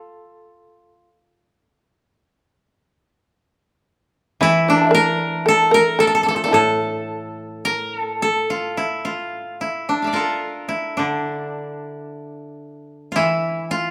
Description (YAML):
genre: japanese traditional, Japanese chamber music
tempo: 55 BPM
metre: 2/4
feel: rubato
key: A miyako bushi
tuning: A4 = 440 Hz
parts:
  - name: koto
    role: melody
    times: 0.0-1.1, 4.4-13.9 s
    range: D4 to F5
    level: -21 LUFS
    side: equal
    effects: none
  - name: shamisen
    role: second line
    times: 4.4-7.6 s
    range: D3 to Bb5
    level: -22 LUFS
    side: equal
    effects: none
  - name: koto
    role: accompaniment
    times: 4.4-13.9 s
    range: A2 to E3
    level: -28 LUFS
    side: equal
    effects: none
room: moderate recital hall reverb, RT60 1.6 s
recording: none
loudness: -19 LUFS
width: mono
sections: 0.0-8.8 A section; 8.8-13.9 B section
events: none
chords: none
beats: | 0.07 1.18 | 2.28 3.36 | 4.42 5.48 | 6.56 7.68 | 8.81 9.92 | 11.02 12.11 | 13.18